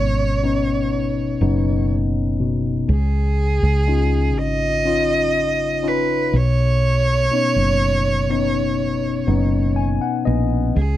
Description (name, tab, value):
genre	pop ballad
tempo	61 BPM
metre	4/4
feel	straight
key	unclear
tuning	A4 = 440 Hz
part	rich cello	melody	0.0-11.0 s	G#4 to D#5	-22 LUFS	right 3 dB	slapback echo
part	tine electric piano	accompaniment	0.0-11.0 s	B2 to G#5	-21 LUFS	left 4 dB	lush chorus
part	fingered electric bass	bass	0.0-11.0 s	F#1 to C#2	-20 LUFS	right 1 dB	none
room	little or no reverb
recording	dry, close 1970s-style studio recording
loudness	-17 LUFS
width	side -13 dB against mid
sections	0.0-11.0 A section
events	tine electric piano fill 9.3-10.8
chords	0.0 Badd9; 2.9 C#add9; 6.3 Badd9